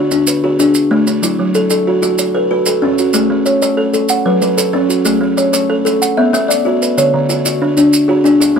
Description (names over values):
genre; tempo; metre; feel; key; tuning
southern african traditional, mbira-style interlocking cycle; 126 BPM (dotted quarters); 12/8; straight; unclear; A4 = 438 Hz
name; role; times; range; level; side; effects
buzzing kalimba; arpeggios; 0.0-8.6 s; D3 to F#5; -16 LUFS; right 4 dB; none
kalimba; arpeggios; 0.0-8.6 s; D3 to E5; -13 LUFS; left 3 dB; none
maracas; percussion; 0.1-8.6 s; none; -20 LUFS; right 4 dB; none
room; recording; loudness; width
light reverb; close, detailed microphones; -11 LUFS; side -6 dB against mid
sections
0.0-8.6 A section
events
none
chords
0.0 D; 1.2 F#m; 3.1 A; 4.1 F#m; 5.1 A; 6.0 Bm; 7.0 D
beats
0.28 0.76 | 1.23 1.71 2.19 2.67 | 3.14 3.62 4.10 4.58 | 5.06 5.53 6.01 6.49 | 6.97 7.45 7.93 8.41